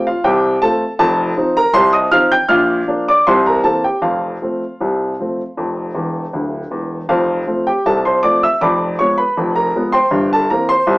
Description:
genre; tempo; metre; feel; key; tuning
ragtime piano; 79 BPM; 2/4; straight; F major; A4 = 440 Hz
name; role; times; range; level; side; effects
warm upright piano; solo; 0.0-11.0 s; D1 to G6; -13 LUFS; equal; none
room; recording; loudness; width
moderate studio reverb, RT60 0.6 s; small speaker sound; -13 LUFS; side -22 dB against mid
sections
0.0-7.1 A section; 7.1-11.0 A section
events
upright piano fill 5.9-7.1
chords
0.0 F; 1.0 F7; 2.5 Bb; 3.2 C7; 4.0 F; 8.6 Fdim7; 10.1 C7/G

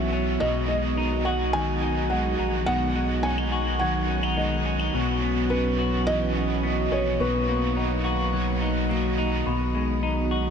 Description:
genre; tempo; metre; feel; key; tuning
dream pop; 106 BPM; 4/4; straight; B major; A4 = 440 Hz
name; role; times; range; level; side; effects
felt-muted upright piano; melody; 0.0-8.9 s; B4 to G#5; -30 LUFS; right 1 dB; ping-pong delay
overdriven electric guitar; accompaniment; 0.0-9.5 s; B2 to F#4; -32 LUFS; right 4 dB; harmonic tremolo, wide subtle chorus
warbly tape-like pad; sustained chords; 0.0-10.5 s; B2 to F#4; -30 LUFS; right 2 dB; chorus, built-in reverb
semi-hollow electric guitar; arpeggios; 0.0-10.5 s; B2 to F#4; -28 LUFS; left 4 dB; wide subtle chorus, ping-pong delay
saturated sub bass; bass; 0.0-10.5 s; A#1 to B1; -28 LUFS; equal; none
worn celesta; texture; 0.0-0.2, 3.8-10.4 s; F#5 to G#6; -40 LUFS; left 2 dB; none
room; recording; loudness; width
moderate shimmer reverb, RT60 6.0 s; none; -22 LUFS; side -7 dB against mid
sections
0.0-9.5 A section; 9.5-10.5 B section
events
none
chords
0.4 B6; 4.9 F#7sus4/B; 7.2 Bmaj7; 9.5 B6

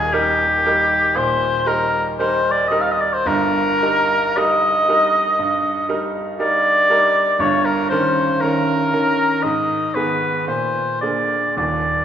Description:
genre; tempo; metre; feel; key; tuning
classical, romantic duo for oboe and grand piano; 53-60 BPM; 4/4; rubato; Eb major; A4 = 441 Hz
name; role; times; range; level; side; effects
warm oboe; melody; 0.0-12.0 s; G4 to F5; -17 LUFS; left 1 dB; none
bright baby grand piano; accompaniment; 0.0-12.0 s; Eb1 to Bb4; -21 LUFS; right 2 dB; none
room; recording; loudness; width
wet concert hall reverb, RT60 1.9 s; recorded in a church or concert hall; -15 LUFS; side -9 dB against mid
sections
0.0-12.0 A section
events
none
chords
0.0 Eb; 3.3 Eb/G; 7.4 Eb7/G; 9.4 Abm; 10.5 Bb9

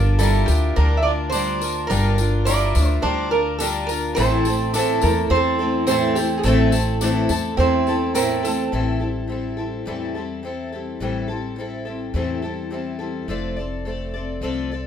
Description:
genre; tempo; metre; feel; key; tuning
acoustic folk duo or small band; 106 BPM; 4/4; straight; unclear; A4 = 441 Hz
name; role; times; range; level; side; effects
metal-body resonator slide guitar; second line; 0.0-8.7 s; G4 to E5; -24 LUFS; right 4 dB; none
picked twelve-string acoustic guitar; accompaniment; 0.0-14.9 s; A2 to D5; -24 LUFS; left 3 dB; none
picked swing-style acoustic guitar; arpeggios; 0.0-8.7 s; C4 to E4; -26 LUFS; right 4 dB; none
upright bass; bass; 0.0-14.9 s; F1 to E2; -23 LUFS; equal; none
tambourine; percussion; 0.2-8.6 s; none; -31 LUFS; left 6 dB; none
room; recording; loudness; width
moderate studio reverb, RT60 0.7 s; minimal, uncompressed stereo recording; -19 LUFS; side -9 dB against mid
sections
0.0-8.7 A section; 8.7-14.9 B section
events
none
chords
0.0 Gm7; 4.2 Am; 8.7 Am7; 13.3 F6

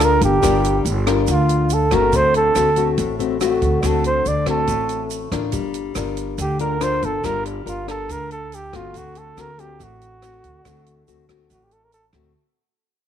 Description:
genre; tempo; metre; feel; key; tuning
bossa nova; 141 BPM; 4/4; straight; unclear; A4 = 440 Hz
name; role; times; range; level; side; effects
breathy flugelhorn; melody; 0.0-12.1 s; D4 to D5; -20 LUFS; right 2 dB; none
nylon-string guitar; accompaniment; 0.0-12.3 s; A2 to Bb4; -22 LUFS; left 8 dB; none
upright bass; bass; 0.0-12.3 s; G1 to D2; -23 LUFS; right 2 dB; none
compact cocktail drum kit; drums; 0.0-12.2 s; hi-hat, kick drum, rim click; -28 LUFS; right 2 dB; none
egg shaker; percussion; 0.0-12.4 s; none; -36 LUFS; right 16 dB; none
room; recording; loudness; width
light reverb, studio reverb; 1960s-style stereo with parts hard left and right; -17 LUFS; side -9 dB against mid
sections
0.0-12.3 A section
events
fade-out 0.0-12.3; flugelhorn solo 0.0-12.3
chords
0.0 Gm7; 2.1 D7; 5.5 Gm7; 8.9 D7

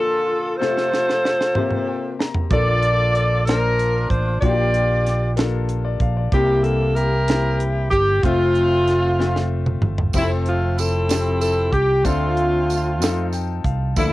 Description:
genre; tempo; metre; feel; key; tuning
slow gospel; 63 BPM (dotted quarters); 6/8; straight; F major; A4 = 444 Hz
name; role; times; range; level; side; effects
bright saxophone section; melody; 0.0-14.1 s; A3 to D5; -19 LUFS; equal; cassette tape
clear concert grand piano; accompaniment; 0.0-14.1 s; Bb2 to Bb5; -26 LUFS; left 6 dB; cassette tape
tight funk drum kit; drums; 0.6-14.1 s; crash cymbal, hi-hat, kick drum, snare drum, toms; -23 LUFS; right 1 dB; cassette tape
fingered electric bass; bass; 2.5-14.1 s; F1 to F2; -21 LUFS; right 1 dB; none
tambourine; percussion; 10.1-14.1 s; none; -32 LUFS; right 11 dB; none
room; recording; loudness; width
light reverb; home recording on cassette; -17 LUFS; side -17 dB against mid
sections
0.0-10.1 A section; 10.1-14.1 A section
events
drum fill 0.6-2.5, 9.2-10.1; grand piano fill 1.6-2.5, 13.0-14.0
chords
0.0 Bbmaj7; 0.6 F/C; 1.6 C7; 2.5 Bbmaj7; 4.4 Gm7/Bb; 6.3 C7; 8.2 Fmaj7; 12.1 Dm7; 13.0 F7

